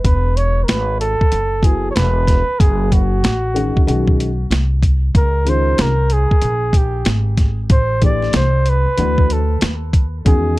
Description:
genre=hip hop, jazz-hop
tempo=94 BPM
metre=4/4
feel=swing 63% on 16ths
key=C# minor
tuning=A4 = 444 Hz
part: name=dark baby grand piano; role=accompaniment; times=0.0-10.6 s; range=D#3 to B4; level=-21 LUFS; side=left 2 dB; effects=none
part: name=upright bass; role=bass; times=0.0-10.6 s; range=E1 to E2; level=-17 LUFS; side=equal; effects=none
part: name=boom bap sampler-style drum kit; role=drums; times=0.0-10.4 s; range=hi-hat, kick drum, snare drum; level=-14 LUFS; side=equal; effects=none
part: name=mellow flugelhorn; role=melody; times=0.1-10.6 s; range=F#4 to D5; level=-20 LUFS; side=right 1 dB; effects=analog delay
room=little or no reverb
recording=dark, warm production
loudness=-13 LUFS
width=side -19 dB against mid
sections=0.0-10.6 A section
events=none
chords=0.0 E; 2.6 F#m; 3.9 Badd9; 5.2 C#69; 7.7 Am7; 9.0 Dadd9

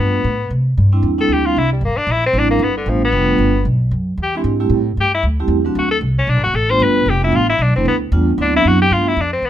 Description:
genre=jazz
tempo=229 BPM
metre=4/4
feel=swing 58% on 8ths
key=G mixolydian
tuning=A4 = 438 Hz
part: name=bright tenor saxophone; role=melody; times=0.0-9.5 s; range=D3 to C5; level=-17 LUFS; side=left 3 dB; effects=none
part: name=vibraphone with soft mallets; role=accompaniment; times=0.0-9.0 s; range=F#3 to G4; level=-18 LUFS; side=right 2 dB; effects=none
part: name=upright bass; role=bass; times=0.0-9.5 s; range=F1 to C3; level=-17 LUFS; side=equal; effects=none
room=light reverb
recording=close, detailed microphones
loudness=-13 LUFS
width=side -11 dB against mid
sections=0.0-8.9 A section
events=tenor saxophone solo 0.0-9.5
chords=0.0 G9; 0.5 C9; 2.6 G9; 3.7 B5; 4.2 E7alt; 4.7 Am7; 5.8 D7; 6.8 G9; 8.4 D13; 8.9 G9

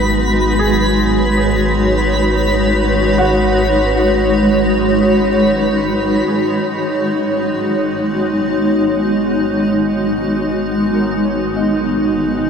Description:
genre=ambient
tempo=free time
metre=none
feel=none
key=unclear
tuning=A4 = 440 Hz
part: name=granular cloud pad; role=sustained chords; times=0.0-12.5 s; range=G#3 to C#5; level=-14 LUFS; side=equal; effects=built-in reverb, shimmer reverb
part: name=felt-muted upright piano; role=arpeggios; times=0.0-12.5 s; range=F#4 to D#5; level=-25 LUFS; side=equal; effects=tape echo, shimmer reverb
part: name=warm sub bass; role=bass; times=0.0-12.5 s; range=G#1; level=-23 LUFS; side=equal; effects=none
part: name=twinkling granular texture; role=texture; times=0.0-6.3 s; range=B4 to B6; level=-22 LUFS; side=right 1 dB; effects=built-in reverb, shimmer reverb
room=wet cathedral reverb, RT60 6.1 s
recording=none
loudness=-13 LUFS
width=side -6 dB against mid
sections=0.0-6.3 A section; 6.3-12.5 B section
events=none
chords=0.0 Badd9/G#

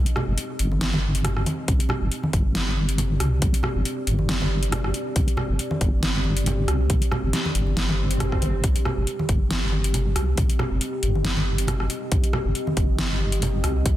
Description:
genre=deep dubstep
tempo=138 BPM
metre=4/4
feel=swing 55% on 16ths, half-time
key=C minor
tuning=A4 = 440 Hz
part: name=deep dark ambient pad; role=sustained chords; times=0.0-14.0 s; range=C4 to Eb5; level=-31 LUFS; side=equal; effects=chorus, built-in reverb
part: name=deep soft wobble bass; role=bass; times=0.0-14.0 s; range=G1 to C2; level=-23 LUFS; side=equal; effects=chorus
part: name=dubstep drum kit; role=drums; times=0.1-14.0 s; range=hi-hat, rim click, snare drum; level=-28 LUFS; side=equal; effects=overdrive
part: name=congas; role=percussion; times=0.2-13.5 s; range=none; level=-30 LUFS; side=right 1 dB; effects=none
part: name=electronic kick drum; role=drums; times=1.7-14.0 s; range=none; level=-22 LUFS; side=equal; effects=overdrive
part: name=swell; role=sound effects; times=7.9-8.6 s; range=none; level=-36 LUFS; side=equal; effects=none
room=digital ambience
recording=dense, heavily limited modern master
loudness=-21 LUFS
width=side -14 dB against mid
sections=0.0-14.0 A section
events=swell 7.9-8.6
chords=0.0 Cm

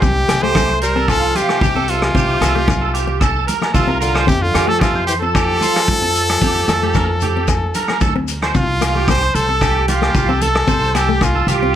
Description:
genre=highlife guitar band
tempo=113 BPM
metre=4/4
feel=straight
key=unclear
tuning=A4 = 440 Hz
part: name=brilliant trumpet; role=melody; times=0.0-11.8 s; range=F4 to C5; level=-18 LUFS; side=equal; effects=none
part: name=warm tenor saxophone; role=second line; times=0.0-8.0 s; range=C3 to A3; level=-25 LUFS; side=left 3 dB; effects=none
part: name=nylon-string guitar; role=accompaniment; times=0.0-11.8 s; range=A3 to C4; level=-24 LUFS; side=left 6 dB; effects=none
part: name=electric guitar at the edge of break-up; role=arpeggios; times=0.0-11.7 s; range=F4 to C5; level=-21 LUFS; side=right 6 dB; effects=ensemble chorus
part: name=upright bass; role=bass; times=0.0-11.8 s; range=C2 to F2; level=-20 LUFS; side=equal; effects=none
part: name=vintage drum kit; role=drums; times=0.0-11.6 s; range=hi-hat, kick drum, rim click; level=-20 LUFS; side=equal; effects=none
part: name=congas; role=percussion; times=0.0-11.3 s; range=none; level=-27 LUFS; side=right 1 dB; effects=none
part: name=shekere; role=percussion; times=0.0-11.6 s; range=none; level=-27 LUFS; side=left 8 dB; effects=none
part: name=agogo bells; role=percussion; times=0.3-11.4 s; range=none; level=-27 LUFS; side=left 5 dB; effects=none
room=light reverb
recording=none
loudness=-13 LUFS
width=side -10 dB against mid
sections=0.0-8.6 A section; 8.6-11.8 B section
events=none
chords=0.0 Csus4; 4.3 F; 8.6 Csus4

